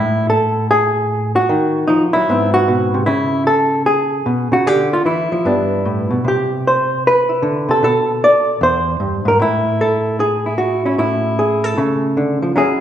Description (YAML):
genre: solo jazz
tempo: 152 BPM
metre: 4/4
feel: swing 66% on 8ths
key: unclear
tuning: A4 = 440 Hz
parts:
  - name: hollow-body jazz guitar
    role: solo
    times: 0.0-12.8 s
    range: E2 to D5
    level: -14 LUFS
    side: equal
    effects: none
room: wet recital hall reverb, RT60 1.8 s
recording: recorded in a church or concert hall, nothing above 11.0 kHz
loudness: -14 LUFS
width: side -10 dB against mid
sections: 0.0-12.5 A section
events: none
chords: 0.0 N.C.; 1.5 D#m; 2.3 G#7alt; 3.1 C#m7; 4.7 Dmadd9; 5.4 G69; 6.2 Cmaj9; 7.8 N.C.; 8.6 Eaug; 9.4 Amaj7; 11.8 C#